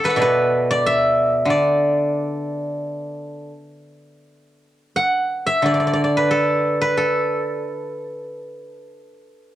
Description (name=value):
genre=chinese traditional, Chinese solo plucked strings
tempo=81-96 BPM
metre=4/4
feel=rubato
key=D gong mode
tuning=A4 = 440 Hz
part: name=steel-string zither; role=solo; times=0.0-9.2 s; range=B2 to D6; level=-18 LUFS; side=equal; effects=cassette tape
room=moderate booth ambience, RT60 0.2 s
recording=home recording on cassette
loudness=-17 LUFS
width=side -13 dB against mid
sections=0.0-4.2 A section; 4.2-9.6 B section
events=none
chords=none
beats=0.18 0.84 | 1.47 2.11 2.79 3.52 | 4.24 4.94 5.64 6.31 | 6.97 7.63 8.28 8.93